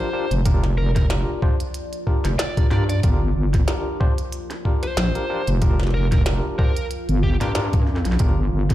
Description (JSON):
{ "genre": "glitch hop", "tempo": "93 BPM", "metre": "4/4", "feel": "swing 56% on 16ths", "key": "G minor pentatonic", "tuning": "A4 = 441 Hz", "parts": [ { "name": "bluesy overdriven lead guitar", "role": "melody", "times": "0.0-7.5 s", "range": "G4 to D5", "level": "-31 LUFS", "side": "equal", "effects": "distortion, vintage 12-bit sampler grit, tape echo" }, { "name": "overdriven tine electric piano", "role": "stabs", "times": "0.0-8.4 s", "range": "D4 to C5", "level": "-29 LUFS", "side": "left 2 dB", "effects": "fast tremolo, sidechain pumping, tape echo" }, { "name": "deep dark ambient pad", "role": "texture", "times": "0.0-8.7 s", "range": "F4 to F5", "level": "-33 LUFS", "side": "equal", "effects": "chorus, built-in reverb, sidechain pumping" }, { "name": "wobble bass", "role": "bass", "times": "0.3-8.7 s", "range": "F1 to G2", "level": "-20 LUFS", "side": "equal", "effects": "chorus, tube saturation" }, { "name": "glitchy drum kit", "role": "drums", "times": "0.3-8.7 s", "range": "hi-hat, snare drum", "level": "-29 LUFS", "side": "equal", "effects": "overdrive" }, { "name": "electronic kick drum", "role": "drums", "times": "0.5-8.7 s", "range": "none", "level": "-19 LUFS", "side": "equal", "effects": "none" } ], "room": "little or no reverb", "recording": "played on a big sound system in a bare room, large studio reverb", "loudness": "-18 LUFS", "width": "side -14 dB against mid", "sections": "0.0-8.7 A section", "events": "none", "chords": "0.0 Gm7" }